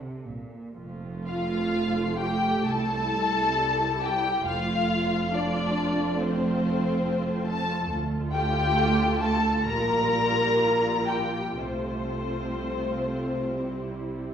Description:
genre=classical, slow romantic movement for string orchestra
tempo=57-72 BPM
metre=4/4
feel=rubato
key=F major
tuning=A4 = 438 Hz
part: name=muted symphonic viola section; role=accompaniment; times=0.0-14.3 s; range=G3 to A4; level=-30 LUFS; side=right 3 dB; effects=none
part: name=muted studio cello section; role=bass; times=0.0-14.3 s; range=C2 to C3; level=-33 LUFS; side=right 2 dB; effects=none
part: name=muted studio double bass section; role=bass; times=0.3-14.3 s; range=F1 to D2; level=-34 LUFS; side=right 2 dB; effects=none
part: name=muted studio violin section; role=melody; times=1.3-14.3 s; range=C5 to Bb5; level=-28 LUFS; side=left 4 dB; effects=none
part: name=muted studio violin section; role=second line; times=1.3-14.3 s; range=C4 to Bb4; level=-30 LUFS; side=equal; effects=none
room=wet recital hall reverb, RT60 1.6 s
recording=recorded in a church or concert hall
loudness=-23 LUFS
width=side -8 dB against mid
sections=0.8-14.3 A section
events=none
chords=0.0 N.C.; 0.8 F; 2.7 C; 4.5 F; 7.9 Dm; 9.7 Gm7/Bb; 11.6 F/C; 13.6 C

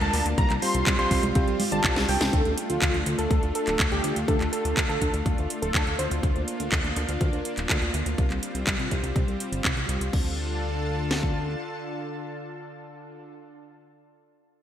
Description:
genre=italo disco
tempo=123 BPM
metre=4/4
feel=straight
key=D minor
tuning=A4 = 443 Hz
part: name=wide unison lead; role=melody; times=0.0-6.1 s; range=F4 to C6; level=-29 LUFS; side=equal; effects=digital delay
part: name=lush unison pad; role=sustained chords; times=0.0-13.2 s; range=D3 to A5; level=-31 LUFS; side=left 1 dB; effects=chorus
part: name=chorused synth bass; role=bass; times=0.0-11.6 s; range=D1 to D2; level=-29 LUFS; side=equal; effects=none
part: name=house drum kit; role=drums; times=0.0-10.2 s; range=congas, crash cymbal, handclaps, hi-hat, snare drum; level=-28 LUFS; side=right 1 dB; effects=gated reverb
part: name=tine electric piano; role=stabs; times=0.1-2.3 s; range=G3 to D5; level=-30 LUFS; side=right 3 dB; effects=medium stereo tremolo
part: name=house drum kit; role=drums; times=0.4-11.3 s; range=kick drum, snare drum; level=-26 LUFS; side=equal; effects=none
room=moderate lush hall reverb, RT60 2.2 s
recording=bright 1980s-style digital production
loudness=-23 LUFS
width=side -10 dB against mid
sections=0.0-2.3 A section; 2.3-10.1 B section; 10.1-14.0 C section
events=drum fill 2.0-2.3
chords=0.4 Csus4; 2.3 Dm; 6.2 Bb/D; 8.2 Csus4; 10.1 Dm

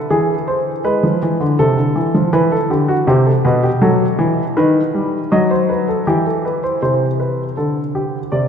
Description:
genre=classical, baroque-style two-part invention for grand piano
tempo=80 BPM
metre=3/4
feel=straight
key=unclear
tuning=A4 = 439 Hz
part: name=dark baby grand piano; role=solo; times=0.0-8.5 s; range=B2 to D#5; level=-14 LUFS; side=equal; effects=none
room=wet church reverb, RT60 3.8 s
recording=recorded in a church or concert hall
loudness=-14 LUFS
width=side -7 dB against mid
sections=0.0-6.8 A section; 6.8-8.5 B section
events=none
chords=0.1 E; 1.6 Am/C; 2.3 Em; 3.8 Esus24; 4.6 B/D#; 6.1 Em; 6.8 C5

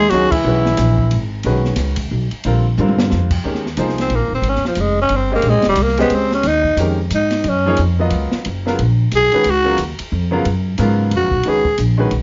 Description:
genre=modal jazz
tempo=180 BPM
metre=3/4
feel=swing 62% on 8ths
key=F# mixolydian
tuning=A4 = 440 Hz
part: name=growling tenor saxophone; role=melody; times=0.0-1.3, 4.0-11.8 s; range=F3 to G#4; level=-18 LUFS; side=equal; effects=none
part: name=clear bass clarinet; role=second line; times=0.0-1.3 s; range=E3 to G#3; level=-24 LUFS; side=equal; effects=none
part: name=upright bass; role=bass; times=0.0-12.2 s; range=Eb1 to Ab2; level=-20 LUFS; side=equal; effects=none
part: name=clear baby grand piano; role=accompaniment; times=0.1-12.1 s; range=Db3 to Eb5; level=-23 LUFS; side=equal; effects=none
part: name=open jazz drum kit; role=drums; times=0.1-12.2 s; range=crash cymbal, hi-hat, kick drum, ride cymbal, snare drum, toms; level=-28 LUFS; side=equal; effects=none
room=light reverb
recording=nothing above 7.5 kHz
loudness=-16 LUFS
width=mono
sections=0.0-3.4 A section; 3.4-11.4 B section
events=band accent 0.3; drum fill 2.8-3.1; tenor saxophone solo 3.4-12.2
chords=0.0 F#9sus4; 2.4 A#; 3.4 Eb9sus4; 7.4 Db9sus4; 11.4 F#sus4

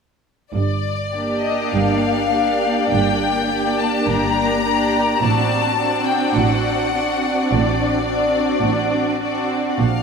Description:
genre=classical, slow romantic movement for string orchestra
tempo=52 BPM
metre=4/4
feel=rubato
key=G minor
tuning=A4 = 444 Hz
part: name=rich studio violin section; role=melody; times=0.5-10.0 s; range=D5 to Bb5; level=-22 LUFS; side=left 6 dB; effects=none
part: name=clear studio cello section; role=bass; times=0.5-10.0 s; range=G2 to Bb2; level=-25 LUFS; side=right 5 dB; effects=none
part: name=clear studio double bass section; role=bass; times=0.5-10.0 s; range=G1 to Bb1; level=-25 LUFS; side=right 4 dB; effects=none
part: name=rich symphonic violin section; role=second line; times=1.1-9.8 s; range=F#4 to D5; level=-23 LUFS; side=left 1 dB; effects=none
part: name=rich studio viola section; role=accompaniment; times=1.2-9.8 s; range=Bb3 to D4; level=-21 LUFS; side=right 1 dB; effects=none
room=wet cathedral reverb, RT60 5.2 s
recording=in a vast, echoing space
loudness=-16 LUFS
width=side -5 dB against mid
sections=0.5-10.0 A section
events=none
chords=0.5 Gm; 5.2 D7/A

